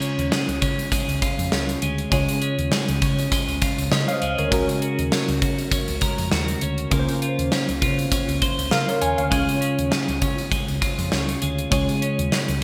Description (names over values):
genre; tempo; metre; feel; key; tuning
1980s-style pop; 100 BPM; 4/4; swing 55% on 16ths; Db major; A4 = 439 Hz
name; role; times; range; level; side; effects
tine electric piano; accompaniment; 0.0-12.6 s; Db3 to Ab5; -27 LUFS; equal; overdrive, ensemble chorus
twelve-string electric guitar; riff; 0.0-12.6 s; Ab3 to C5; -30 LUFS; equal; subtle chorus, delay
gated 80s drum kit; drums; 0.0-12.6 s; hi-hat, kick drum, snare drum; -26 LUFS; equal; gated reverb
hollow-body short-scale fingered electric bass; bass; 0.2-12.6 s; Db2 to Db3; -29 LUFS; equal; none
room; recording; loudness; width
moderate plate reverb, RT60 2.6 s; bright 1980s-style digital production; -22 LUFS; mono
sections
0.0-12.6 A section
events
tine electric piano fill 8.4-9.3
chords
0.0 Db; 4.5 Gbadd9/Db; 6.9 Bbmadd9/Db; 9.3 Db